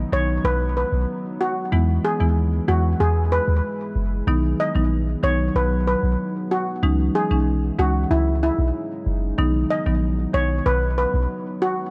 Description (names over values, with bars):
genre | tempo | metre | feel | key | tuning
dancehall | 94 BPM | 4/4 | straight | B major | A4 = 440 Hz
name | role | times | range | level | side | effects
deep dark ambient pad | sustained chords | 0.0-11.9 s | C#3 to B4 | -33 LUFS | equal | chorus, built-in reverb
clean 808-style bass | bass | 0.0-11.3 s | F#1 to E2 | -23 LUFS | equal | none
steel pan | melody | 0.1-11.7 s | E4 to D#5 | -26 LUFS | equal | delay
marimba with medium mallets | accompaniment | 0.1-10.5 s | D#3 to E4 | -29 LUFS | equal | none
room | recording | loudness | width
light reverb, small room ambience | none | -21 LUFS | mono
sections
0.0-4.3 A section; 4.3-11.9 B section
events
none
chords
0.0 B; 1.7 E; 4.3 B; 6.8 C#madd9; 9.4 B